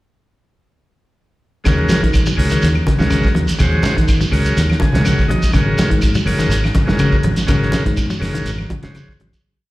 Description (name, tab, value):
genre	afrobeat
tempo	123 BPM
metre	4/4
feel	straight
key	Eb dorian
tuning	A4 = 444 Hz
part	combo organ	accompaniment	1.6-9.1 s	Ab3 to Ab5	-22 LUFS	equal	spring reverb, slapback echo
part	semi-hollow electric guitar	arpeggios	1.7-9.4 s	Db3 to Gb3	-22 LUFS	left 2 dB	none
part	fingered electric bass	bass	1.7-9.3 s	Gb1 to Eb3	-18 LUFS	equal	none
part	cloth-damped thuddy drum kit	drums	1.7-9.4 s	hi-hat, kick drum, snare drum	-18 LUFS	equal	none
part	claves	percussion	1.7-9.1 s	none	-34 LUFS	left 4 dB	none
part	congas	percussion	1.7-9.3 s	none	-23 LUFS	right 1 dB	none
part	shekere	percussion	1.7-9.4 s	none	-24 LUFS	right 1 dB	none
room	light reverb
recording	live gig heard through the venue's PA, recital hall reverb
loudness	-13 LUFS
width	side -18 dB against mid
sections	1.7-9.4 groove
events	transistor combo organ fill 4.6-5.5; fade-out 7.5-9.4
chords	1.7 Ebm7; 5.5 Ab7sus4